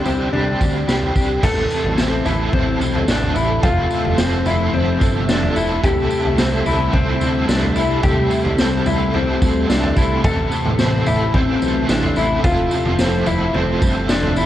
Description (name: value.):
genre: dream pop.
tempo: 109 BPM.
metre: 4/4.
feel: straight.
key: C major.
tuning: A4 = 440 Hz.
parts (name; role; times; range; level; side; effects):
overdriven electric guitar; accompaniment; 0.0-14.5 s; A2 to A4; -23 LUFS; right 2 dB; tremolo, ensemble chorus.
string machine, cellos; sustained chords; 0.0-14.5 s; C3 to E5; -23 LUFS; right 1 dB; ensemble chorus.
mellow electric guitar; arpeggios; 0.0-14.5 s; C4 to A4; -21 LUFS; left 4 dB; lush chorus, digital delay.
fat analog bass; bass; 0.0-14.5 s; F1 to D2; -23 LUFS; equal; none.
raw garage drum kit; drums; 0.1-14.5 s; crash cymbal, kick drum, snare drum, tambourine, toms; -21 LUFS; equal; none.
room: light reverb.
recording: worn, warbling old tape, cassette tape, warbly pitch drift.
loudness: -15 LUFS.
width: side -12 dB against mid.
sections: 0.0-1.4 A section; 1.4-14.5 B section.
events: none.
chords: 0.0 Csus2; 1.4 Am; 3.6 Fmaj7; 5.8 C6; 10.2 Am; 12.4 Fmaj7.